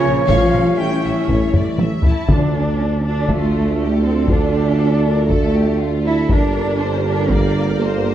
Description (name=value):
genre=cinematic, epic orchestral film score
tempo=120 BPM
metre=4/4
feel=straight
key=D minor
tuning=A4 = 440 Hz
part: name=rich symphonic violin section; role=melody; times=0.0-8.1 s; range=F4 to A5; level=-28 LUFS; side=left 5 dB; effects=none
part: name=mellow silver concert flute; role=second line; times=0.0-2.0 s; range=Db5 to F5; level=-29 LUFS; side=left 2 dB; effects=none
part: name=warm symphonic violin section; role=second line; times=0.0-8.1 s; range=Db5 to F5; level=-32 LUFS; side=left 4 dB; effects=none
part: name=warm symphonic viola section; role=accompaniment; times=0.0-8.1 s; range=F3 to Bb4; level=-28 LUFS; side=right 3 dB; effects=none
part: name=mellow French horn section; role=sustained chords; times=0.0-8.1 s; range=Db4 to D5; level=-25 LUFS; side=left 4 dB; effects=none
part: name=warm trombone section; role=sustained chords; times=0.0-8.1 s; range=D3 to Bb3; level=-27 LUFS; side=right 2 dB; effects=none
part: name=mellow trumpet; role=stabs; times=0.0-2.0 s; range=Db5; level=-25 LUFS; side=right 4 dB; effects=none
part: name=mellow tuba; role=bass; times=0.0-8.1 s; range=G1 to D2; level=-20 LUFS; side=right 3 dB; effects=none
part: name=warm studio cello section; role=bass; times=0.0-8.1 s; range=Db3 to E4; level=-22 LUFS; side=right 2 dB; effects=none
part: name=rich studio double bass section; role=bass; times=0.1-8.1 s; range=G1 to D2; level=-26 LUFS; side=right 2 dB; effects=none
part: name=taiko ensemble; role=drums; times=0.3-7.8 s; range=none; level=-18 LUFS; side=left 1 dB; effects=none
part: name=timpani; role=percussion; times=2.3-3.0 s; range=D3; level=-22 LUFS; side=left 1 dB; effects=none
room=moderate scoring stage reverb, RT60 1.7 s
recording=none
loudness=-14 LUFS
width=side -11 dB against mid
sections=0.0-2.3 A section; 2.3-8.1 B section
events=drum fill 1.5-2.3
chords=0.3 A7; 2.3 Dm; 6.3 Gm